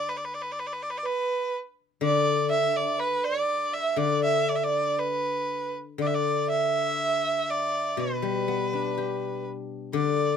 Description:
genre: chinese traditional, Chinese chamber ensemble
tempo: 61 BPM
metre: 2/4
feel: rubato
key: unclear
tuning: A4 = 440 Hz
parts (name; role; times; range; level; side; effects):
- clear erhu; melody; 0.0-10.4 s; B4 to E5; -28 LUFS; equal; none
- vibraphone with soft mallets; second line; 0.0-10.4 s; B4 to E5; -29 LUFS; right 8 dB; none
- guzheng; accompaniment; 0.0-10.4 s; B2 to G4; -29 LUFS; left 9 dB; none
room: little or no reverb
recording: close, detailed microphones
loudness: -24 LUFS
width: side -7 dB against mid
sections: 0.0-10.4 A section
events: none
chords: none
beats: | 0.10 1.07 | 2.03 3.00 | 3.99 5.00 | 6.00 7.00 | 7.99 8.97 | 9.94

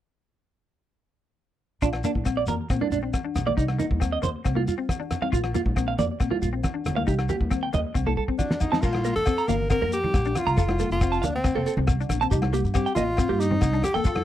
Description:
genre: highlife guitar band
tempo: 137 BPM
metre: 4/4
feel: straight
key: Bb major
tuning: A4 = 440 Hz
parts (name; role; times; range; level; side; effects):
- clean electric guitar; accompaniment; 1.8-14.2 s; Bb3 to F4; -31 LUFS; left 9 dB; ensemble chorus
- clean electric guitar; arpeggios; 1.8-14.1 s; D4 to Bb5; -28 LUFS; right 7 dB; slapback echo
- upright bass; bass; 1.8-14.2 s; F1 to Bb2; -28 LUFS; equal; none
- cloth-damped thuddy drum kit; drums; 1.8-14.2 s; crash cymbal, hi-hat, kick drum, rim click, snare drum; -26 LUFS; equal; none
- shekere; percussion; 1.8-14.2 s; none; -31 LUFS; left 1 dB; none
- agogo bells; percussion; 1.9-14.2 s; none; -37 LUFS; left 9 dB; none
- congas; percussion; 2.0-14.2 s; none; -33 LUFS; right 2 dB; none
- clear tenor saxophone; melody; 8.4-14.2 s; C4 to Bb4; -26 LUFS; equal; none
room: little or no reverb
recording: dry, close 1970s-style studio recording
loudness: -22 LUFS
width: side -12 dB against mid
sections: 1.8-8.8 A section; 8.8-14.2 B section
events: drum fill 8.0-8.8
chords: 1.8 Bb; 3.6 Cm; 4.5 F5/C; 5.3 Bb; 7.1 Cm; 8.0 Cm13; 8.8 Bb5; 10.6 F; 12.3 Cm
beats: | 1.82 2.26 2.70 3.14 | 3.57 4.01 4.45 4.89 | 5.33 5.77 6.20 6.64 | 7.08 7.52 7.96 8.39 | 8.83 9.27 9.70 10.14 | 10.57 11.01 11.45 11.88 | 12.32 12.75 13.19 13.62 | 14.06

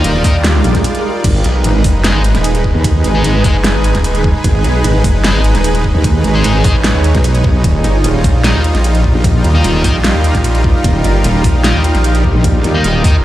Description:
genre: heavy wobble dubstep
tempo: 150 BPM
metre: 4/4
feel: half-time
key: unclear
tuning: A4 = 440 Hz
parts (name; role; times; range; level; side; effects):
- supersaw pad; sustained chords; 0.0-13.2 s; G3 to D5; -19 LUFS; right 1 dB; sidechain pumping
- distorted electric guitar; stabs; 0.0-13.2 s; G#3 to D#5; -22 LUFS; left 2 dB; distortion, vintage 12-bit sampler grit, tape echo
- wobble bass; bass; 0.0-13.0 s; D#1 to D#2; -12 LUFS; equal; chorus, overdrive
- dubstep drum kit; drums; 0.0-13.1 s; crash cymbal, hi-hat, snare drum; -18 LUFS; equal; small room ambience
- granular cloud pad; texture; 0.0-13.2 s; D#4 to G#5; -20 LUFS; right 1 dB; built-in reverb, sidechain pumping
- snarling distorted saw bass; bass; 0.2-13.2 s; D#1 to D#2; -13 LUFS; equal; distortion, overdrive
- electronic kick drum; drums; 0.2-13.1 s; none; -13 LUFS; equal; small room ambience
- swell; sound effects; 0.6-1.2 s; none; -21 LUFS; right 3 dB; none
room: little or no reverb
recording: played on a big sound system in a bare room, large studio reverb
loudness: -9 LUFS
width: side -14 dB against mid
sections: 0.0-13.2 A section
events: swell 0.6-1.2; break 0.8-1.2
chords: 0.0 D#add9; 1.2 G#m; 7.6 D#add9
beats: 0.04 0.44 0.84 | 1.24 1.64 2.04 2.44 | 2.84 3.24 3.64 4.04 | 4.44 4.84 5.24 5.64 | 6.04 6.44 6.84 7.24 | 7.64 8.04 8.44 8.84 | 9.24 9.64 10.04 10.44 | 10.84 11.24 11.64 12.04 | 12.44 12.84 13.24

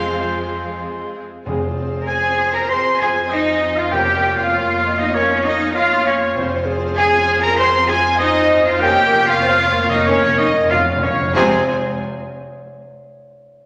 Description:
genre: quick classical-period movement for symphony orchestra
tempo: 97 BPM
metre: 4/4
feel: straight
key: F minor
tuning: A4 = 439 Hz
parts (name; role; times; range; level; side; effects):
- rich chamber violin section; melody; 0.0-11.7 s; C5 to F5; -35 LUFS; equal; none
- clear oboe; second line; 0.0-11.6 s; Ab4 to C6; -25 LUFS; equal; none
- concert flute; second line; 0.0-11.7 s; C5 to C6; -26 LUFS; equal; none
- dark clarinet; second line; 0.0-11.6 s; F4 to F5; -27 LUFS; equal; none
- warm chamber violin section; second line; 0.0-11.7 s; F4 to C6; -28 LUFS; equal; none
- mellow bassoon; accompaniment; 0.0-1.1, 11.4-11.6 s; C3 to Ab3; -27 LUFS; equal; none
- rich symphonic viola section; accompaniment; 0.0-11.7 s; Ab3 to F4; -31 LUFS; equal; none
- clear symphonic cello section; bass; 0.0-11.7 s; F3 to C5; -23 LUFS; equal; none
- rich chamber double bass section; bass; 0.0-11.7 s; F2; -32 LUFS; equal; none
- mellow French horn section; sustained chords; 0.2-11.6 s; Ab3 to C5; -29 LUFS; equal; none
- mellow trumpet section; stabs; 0.2-11.6 s; Ab4 to C6; -23 LUFS; equal; none
- timpani; percussion; 1.5-11.7 s; F2; -30 LUFS; equal; none
room: wet scoring stage reverb, RT60 1.8 s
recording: none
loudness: -17 LUFS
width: mono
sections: 0.0-1.5 A section; 1.5-11.4 B section; 11.4-13.7 C section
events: timpani fill 8.8-11.4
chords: 0.0 Fm; 3.9 Bbm/F; 6.4 Fm; 8.8 Bbm/F; 11.4 Fm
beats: 0.20 0.83 | 1.46 2.08 2.70 3.31 | 3.92 4.53 5.14 5.75 | 6.36 6.97 7.58 8.19 | 8.81 9.44 10.06 10.71 | 11.36

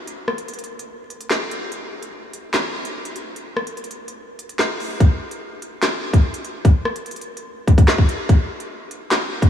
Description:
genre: hip hop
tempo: 146 BPM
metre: 4/4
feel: half-time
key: none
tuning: none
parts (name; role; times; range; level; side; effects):
- drill drum kit; drums; 0.1-9.5 s; handclaps, hi-hat, kick drum, rim click, snare drum; -18 LUFS; equal; none
room: moderate huge ambient reverb, RT60 4.2 s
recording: dreamy mix soaked in reverb, vinyl crackle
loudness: -18 LUFS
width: side -10 dB against mid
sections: 0.0-9.5 A section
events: break 0.0-5.0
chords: none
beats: | 0.07 0.48 0.90 1.31 | 1.72 2.13 2.54 2.95 | 3.36 3.77 4.18 4.59 | 5.00 5.42 5.83 6.24 | 6.65 7.06 7.47 7.88 | 8.29 8.70 9.11

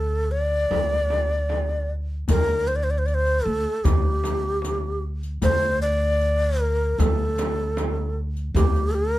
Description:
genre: Persian modal ensemble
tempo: 76 BPM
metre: 4/4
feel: straight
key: D dastgah shur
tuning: A4 = 440 Hz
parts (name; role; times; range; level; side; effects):
- breathy bright low ney; melody; 0.0-9.2 s; G4 to D5; -24 LUFS; equal; none
- upright bass; bass; 0.0-9.2 s; D2; -24 LUFS; equal; none
- tombak; percussion; 0.1-8.9 s; none; -28 LUFS; left 2 dB; none
- frame drum; percussion; 0.7-8.7 s; none; -29 LUFS; right 3 dB; none
- riq; percussion; 2.3-9.0 s; none; -33 LUFS; left 7 dB; none
room: little or no reverb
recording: dark, warm production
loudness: -21 LUFS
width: side -15 dB against mid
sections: 0.0-2.3 A section; 2.3-9.2 B section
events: none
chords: none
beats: 0.72 1.50 | 2.29 3.07 3.85 4.64 | 5.42 6.21 6.99 7.77 | 8.56

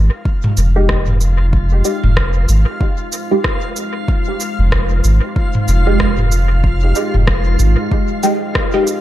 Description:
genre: ambient dub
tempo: 94 BPM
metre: 4/4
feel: swing 58% on 16ths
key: F minor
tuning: A4 = 439 Hz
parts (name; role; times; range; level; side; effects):
- deep dark ambient pad; sustained chords; 0.0-9.0 s; Ab3 to C5; -26 LUFS; equal; chorus, built-in reverb
- soft dub sub bass; bass; 0.0-7.8 s; F1 to Ab1; -13 LUFS; equal; none
- backwards swelling texture; texture; 0.2-9.0 s; F4 to F5; -26 LUFS; left 1 dB; built-in reverb
- electronic kick drum; drums; 0.3-8.7 s; none; -18 LUFS; equal; overdrive
- organic electronic drum kit; drums; 0.4-9.0 s; rim click, shaker, toms; -21 LUFS; equal; dub echo
- filtered dub chord stab; stabs; 0.8-8.8 s; Ab3 to G4; -19 LUFS; right 1 dB; phaser, analog chorus, dub echo
room: little or no reverb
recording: lossy compression artefacts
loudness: -13 LUFS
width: side -14 dB against mid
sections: 0.0-9.0 A section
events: fade-in on ambient pad 0.0-9.0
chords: 0.0 Fm9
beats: 0.25 0.89 | 1.53 2.17 2.81 3.44 | 4.08 4.72 5.36 6.00 | 6.64 7.27 7.91 8.55

